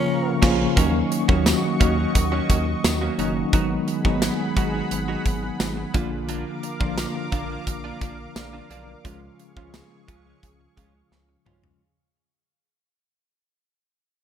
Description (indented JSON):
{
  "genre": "1980s-style pop",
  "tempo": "87 BPM",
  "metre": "4/4",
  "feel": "straight",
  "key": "Eb minor",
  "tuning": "A4 = 441 Hz",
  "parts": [
    { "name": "mellow tine electric piano", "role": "accompaniment", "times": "0.0-11.8 s", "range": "Db3 to F5", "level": "-25 LUFS", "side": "left 1 dB", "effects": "medium stereo tremolo" },
    { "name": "lush unison pad", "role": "sustained chords", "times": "0.0-11.8 s", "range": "Gb4 to D6", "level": "-32 LUFS", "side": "left 1 dB", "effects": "chorus" },
    { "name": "direct-recorded clean electric guitar", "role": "riff", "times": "0.4-11.7 s", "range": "Ab3 to Gb4", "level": "-32 LUFS", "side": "right 6 dB", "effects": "analog chorus, ping-pong delay" },
    { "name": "rubbery square bass", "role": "bass", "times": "0.4-11.7 s", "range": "Gb1 to Eb2", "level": "-29 LUFS", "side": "equal", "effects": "none" },
    { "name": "modern studio drum kit", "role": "drums", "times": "0.4-11.8 s", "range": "crash cymbal, hi-hat, kick drum, snare drum, tambourine, toms", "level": "-22 LUFS", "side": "equal", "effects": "gated reverb" }
  ],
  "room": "moderate plate reverb, RT60 1.5 s, small room reverb",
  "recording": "bright 1980s-style digital production",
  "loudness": "-20 LUFS",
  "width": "side -9 dB against mid",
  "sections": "0.8-11.8 A section",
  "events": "band accent 0.0-0.8; fade-out 0.8-11.8; drum fill 11.1-11.8",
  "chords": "0.0 Bbm; 0.8 Ebm7; 3.5 Abm7; 5.9 Bb; 9.0 Db",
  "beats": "0.08 | 0.77 1.46 2.15 2.84 | 3.53 4.22 4.91 5.60 | 6.29 6.98 7.67 8.36 | 9.05 9.74 10.43 11.12"
}